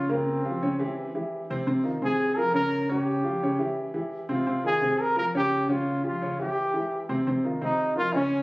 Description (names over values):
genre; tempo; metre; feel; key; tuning
latin; 172 BPM; 4/4; straight; F minor; A4 = 441 Hz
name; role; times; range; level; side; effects
breathy trombone; melody; 0.0-8.4 s; C4 to Bb4; -26 LUFS; equal; none
dark grand piano; accompaniment; 0.0-8.4 s; C3 to Db5; -26 LUFS; equal; none
room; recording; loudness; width
moderate large studio reverb, RT60 1.3 s; recorded on a phone in the room, club reverb; -24 LUFS; side -23 dB against mid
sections
0.0-8.4 A section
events
none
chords
0.3 Gm7b5; 1.0 C; 1.7 Fm7; 2.4 Bbm; 3.1 C#dim; 3.8 C; 4.5 Fm7; 5.2 Bbm; 5.9 C#dim; 6.6 C; 7.3 F5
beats
| 0.27 0.62 0.97 1.32 | 1.67 2.02 2.37 2.72 | 3.07 3.42 3.77 4.12 | 4.47 4.82 5.17 5.52 | 5.87 6.22 6.57 6.92 | 7.27 7.62 7.97 8.32